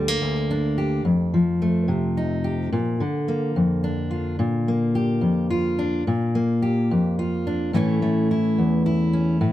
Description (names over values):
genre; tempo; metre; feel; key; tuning
folk; 72 BPM (dotted quarters); 6/8; straight; unclear; A4 = 440 Hz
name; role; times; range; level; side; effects
fingerpicked steel-string acoustic guitar; solo; 0.0-9.5 s; D2 to G4; -20 LUFS; left 1 dB; analog delay
room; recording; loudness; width
light reverb; none; -20 LUFS; side -13 dB against mid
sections
0.0-4.4 A section; 4.4-9.5 B section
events
none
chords
0.0 Bb/D; 1.0 F7; 2.7 Bb; 7.7 A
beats
0.21 | 1.04 1.88 | 2.72 3.55 | 4.39 5.22 | 6.06 6.89 | 7.73 8.56 | 9.40